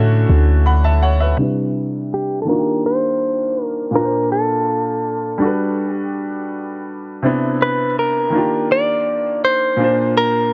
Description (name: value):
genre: contemporary R&B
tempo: 82 BPM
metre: 4/4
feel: straight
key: unclear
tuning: A4 = 443 Hz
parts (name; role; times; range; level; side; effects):
- clear grand piano; accompaniment; 0.0-10.5 s; Bb2 to B5; -22 LUFS; equal; low-pass filter
- mellow French horn section; sustained chords; 0.0-1.4 s; D3 to F#4; -30 LUFS; equal; none
- warm 808-style bass; bass; 0.0-1.3 s; D2 to A2; -15 LUFS; equal; none
- large celesta; texture; 0.0-1.3 s; A5; -42 LUFS; equal; none
- direct-recorded clean electric guitar; melody; 2.1-10.5 s; G4 to D5; -20 LUFS; equal; low-pass filter
room: little or no reverb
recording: dry, gritty hardware recording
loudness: -18 LUFS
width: mono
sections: 0.0-1.4 A section; 1.4-10.5 B section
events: filter sweep 1.4-10.5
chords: 0.0 Dmaj9; 1.4 Cmaj9; 2.5 Ebmaj9; 3.9 Bbmaj9; 5.4 Gmaj9; 7.2 Cmaj9; 8.3 Ebmaj9; 9.8 Bbadd9